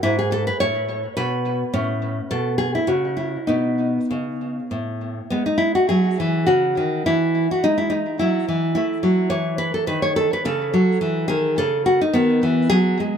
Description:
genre	classical, baroque-style dance for nylon-string guitar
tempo	106 BPM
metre	3/4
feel	rubato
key	E major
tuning	A4 = 439 Hz
part	nylon-string guitar	solo	0.0-13.2 s	G#2 to C#5	-18 LUFS	equal	tape echo
room	light reverb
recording	none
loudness	-18 LUFS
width	side -8 dB against mid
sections	0.0-5.3 A section; 5.3-13.2 A section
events	none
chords	0.0 G#madd11; 1.7 Aadd9; 5.3 E; 8.8 A5; 10.4 A/C#; 12.1 B/D#

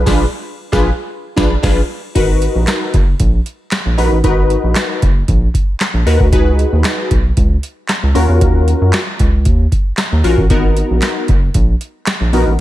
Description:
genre	early-eighties boogie funk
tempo	115 BPM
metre	4/4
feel	straight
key	unclear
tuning	A4 = 440 Hz
part	funky polysynth comp	accompaniment	0.0-12.5 s	Cb4 to Cb5	-17 LUFS	left 2 dB	chorus
part	rubbery square bass	bass	0.0-12.6 s	Gb1 to Gb2	-14 LUFS	equal	none
part	booming analog drum machine	drums	0.1-12.5 s	crash cymbal, handclaps, hi-hat, kick drum, snare drum	-15 LUFS	equal	overdrive, gated reverb
room	little or no reverb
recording	none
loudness	-12 LUFS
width	side -15 dB against mid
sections	0.0-2.2 A section; 2.2-12.6 B section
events	band accent 0.1-2.2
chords	0.0 Bb7b9; 2.2 Abm9; 6.3 Db7sus4; 8.2 Ebm9; 10.5 Abm9

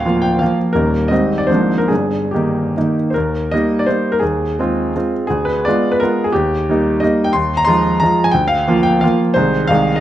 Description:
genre	classical, romantic triple-time dance for piano with dotted rhythms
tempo	136-189 BPM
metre	3/4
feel	rubato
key	Eb major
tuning	A4 = 439 Hz
part	clear baby grand piano	solo	0.0-10.0 s	D1 to C6	-13 LUFS	equal	none
room	moderate recital hall reverb, RT60 1.6 s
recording	close, detailed microphones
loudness	-13 LUFS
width	side -12 dB against mid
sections	0.0-3.2 A section; 3.2-10.0 A section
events	none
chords	0.0 Bb/D; 0.8 Eb; 1.1 Abmaj7; 1.5 Bb7/Ab; 1.9 Eb/G; 3.2 Eb; 4.2 Fm7/Eb; 5.3 Ddim7; 6.3 Eb; 7.3 Fm7/Eb; 8.3 Bb/D; 9.4 Ab/C

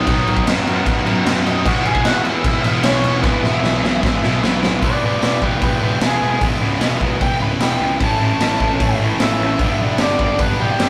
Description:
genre	punk rock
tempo	151 BPM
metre	4/4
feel	straight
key	E major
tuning	A4 = 440 Hz
part	overdriven electric guitar	melody	0.0-10.9 s	B3 to B5	-24 LUFS	equal	none
part	distorted electric guitar	riff	0.0-10.9 s	G2 to E4	-27 LUFS	equal	overdrive
part	distorted electric guitar	riff	0.0-10.9 s	E2 to B3	-29 LUFS	equal	none
part	tight distorted guitar	riff	0.0-10.9 s	G2 to E4	-27 LUFS	equal	distortion
part	fuzz picked electric bass	bass	0.0-10.9 s	E1 to F#2	-24 LUFS	equal	overdrive
part	raw garage drum kit	drums	0.1-10.9 s	crash cymbal, hi-hat, kick drum, snare drum	-21 LUFS	equal	none
room	moderate small room reverb, RT60 0.5 s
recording	rough rehearsal-room recording, tube saturation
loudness	-17 LUFS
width	mono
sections	0.0-4.8 A section; 4.8-10.9 B section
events	drum fill 3.2-4.8; overdriven electric guitar solo 4.8-10.9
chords	0.0 B; 1.7 E; 8.0 A; 9.6 G

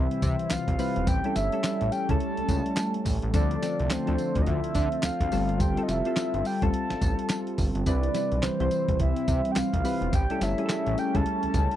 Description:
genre	R&B, new jack swing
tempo	106 BPM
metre	4/4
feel	swing 60% on 16ths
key	C major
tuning	A4 = 440 Hz
part	soft octave-layered synth lead	melody	0.0-11.8 s	C5 to A5	-30 LUFS	equal	chorus, phaser
part	soft electric-piano-like synth keys	accompaniment	0.0-11.8 s	F3 to C5	-31 LUFS	left 3 dB	chorus
part	phased analog pad	sustained chords	0.0-11.8 s	C3 to F4	-32 LUFS	right 1 dB	phaser, chorus
part	fat analog bass	bass	0.0-11.7 s	E1 to D3	-29 LUFS	equal	none
part	dusty soul sampler-style drum kit	drums	0.1-11.8 s	handclaps, hi-hat, kick drum, snare drum, tambourine	-28 LUFS	equal	none
room	light reverb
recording	dry, close 1970s-style studio recording, faint mains hum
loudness	-24 LUFS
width	side -12 dB against mid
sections	0.0-11.8 A section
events	none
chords	0.0 Cmaj7; 1.1 A7; 3.3 Dm7; 5.3 G9sus4; 7.9 Cmaj7; 10.1 A7

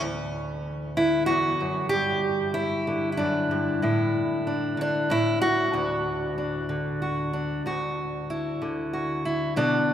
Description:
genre	folk, solo fingerstyle acoustic guitar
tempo	94 BPM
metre	3/4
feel	straight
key	D major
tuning	A4 = 441 Hz
part	fingerpicked steel-string acoustic guitar	solo	0.0-9.9 s	D2 to G4	-24 LUFS	equal	none
room	wet cathedral reverb, RT60 4.7 s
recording	recorded in a church or concert hall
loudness	-24 LUFS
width	side -10 dB against mid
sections	0.0-7.7 A section; 7.7-9.9 A section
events	none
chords	0.0 D; 1.9 G5; 3.8 Asus4; 5.1 N.C.; 5.7 D; 7.7 Dadd9

